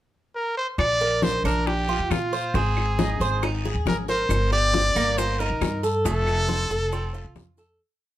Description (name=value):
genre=latin, Cuban son and guajira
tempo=137 BPM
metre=4/4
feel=straight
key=Bb major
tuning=A4 = 440 Hz
part: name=brilliant trumpet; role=melody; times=0.4-7.3 s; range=F4 to D5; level=-25 LUFS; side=equal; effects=plate reverb
part: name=upright bass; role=bass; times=0.8-7.8 s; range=F1 to Bb2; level=-26 LUFS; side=equal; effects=none
part: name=bongos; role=percussion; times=0.8-7.8 s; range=none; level=-30 LUFS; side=left 7 dB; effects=none
part: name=claves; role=percussion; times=0.8-7.1 s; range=none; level=-38 LUFS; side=right 2 dB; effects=none
part: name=congas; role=percussion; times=0.8-7.8 s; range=none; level=-31 LUFS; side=left 1 dB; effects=none
part: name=guiro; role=percussion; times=0.8-7.8 s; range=none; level=-40 LUFS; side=left 6 dB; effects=none
part: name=Cuban tres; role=arpeggios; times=1.0-7.8 s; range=A3 to C5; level=-28 LUFS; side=right 3 dB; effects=none
part: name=maracas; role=percussion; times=4.3-7.8 s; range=none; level=-41 LUFS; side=right 7 dB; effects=none
room=light reverb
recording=none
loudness=-21 LUFS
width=side -13 dB against mid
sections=0.0-0.8 pickup bar; 0.8-7.8 verse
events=fade-out 6.1-7.8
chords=0.0 N.C.; 0.8 Bb; 2.5 Ab; 4.3 Eb/G; 6.1 F